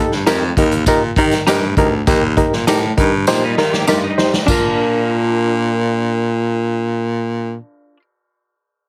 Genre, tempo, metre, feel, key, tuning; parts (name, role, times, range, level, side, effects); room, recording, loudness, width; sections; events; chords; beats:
uptempo 1960s-style soul; 100 BPM; 4/4; straight; Bb major; A4 = 439 Hz
barky reed electric piano; accompaniment; 0.0-7.6 s; D4 to C5; -20 LUFS; equal; overdrive, fast tremolo
raspy baritone saxophone; bass; 0.0-7.6 s; D2 to Eb3; -20 LUFS; equal
swinging big-band drum kit; drums; 0.1-4.6 s; crash cymbal, hi-hat, kick drum, snare drum; -21 LUFS; equal
semi-hollow electric guitar; stabs; 0.3-8.0 s; D4 to Bb4; -23 LUFS; equal; subtle chorus
tambourine; percussion; 0.3-4.8 s; -30 LUFS; equal
clean electric guitar; riff; 3.3-4.5 s; F3 to G4; -25 LUFS; equal; ensemble chorus
little or no reverb; heavily compressed radio sound; -16 LUFS; mono
0.0-4.5 A section; 4.5-6.9 B section
drum fill 3.3-4.5
0.0 Eb; 4.5 Bb
0.26 0.86 1.47 | 2.07 2.67 3.27 3.88 | 4.48 5.08 5.68 6.28